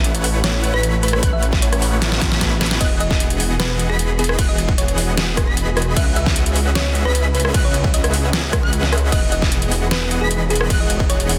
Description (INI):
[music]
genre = future bass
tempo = 152 BPM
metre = 4/4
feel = half-time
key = E major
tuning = A4 = 442 Hz
[part]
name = warm studio string section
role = sustained chords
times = 0.0-11.4 s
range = C#3 to G#4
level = -35 LUFS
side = equal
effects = none
[part]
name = unison pluck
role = arpeggios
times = 0.0-11.4 s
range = F#6 to B6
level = -32 LUFS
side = equal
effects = sidechain pumping
[part]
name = supersaw chords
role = riff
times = 0.0-11.4 s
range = E3 to B5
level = -27 LUFS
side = equal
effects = sidechain pumping, dub echo
[part]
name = detuned saw bass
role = bass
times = 0.0-11.4 s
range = E1 to C#2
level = -23 LUFS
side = equal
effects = chorus, sidechain pumping
[part]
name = dubstep drum kit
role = drums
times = 0.0-11.4 s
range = crash cymbal, hi-hat, rim click, snare drum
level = -24 LUFS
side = equal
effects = overdrive
[part]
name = thumb-piano-like synth pluck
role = melody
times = 0.4-11.3 s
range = G#4 to E5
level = -29 LUFS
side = equal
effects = chorus, sidechain pumping, dub echo
[part]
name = electronic kick drum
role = drums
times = 1.2-11.1 s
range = none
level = -21 LUFS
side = equal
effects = overdrive
[part]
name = noise sweep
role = sound effects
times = 1.6-2.8 s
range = none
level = -35 LUFS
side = equal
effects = none
[sound]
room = little or no reverb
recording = dense, heavily limited modern master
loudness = -18 LUFS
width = mono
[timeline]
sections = 0.0-11.4 A section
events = noise sweep 1.6-2.8; drum fill 2.0-2.8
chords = 0.0 A69; 2.8 Emaj9; 6.0 C#m11; 9.1 Emaj9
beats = 0.04 0.44 0.83 | 1.23 1.62 2.02 2.41 | 2.81 3.20 3.60 3.99 | 4.39 4.78 5.17 5.57 | 5.96 6.36 6.75 7.15 | 7.54 7.94 8.33 8.73 | 9.12 9.52 9.91 10.31 | 10.70 11.10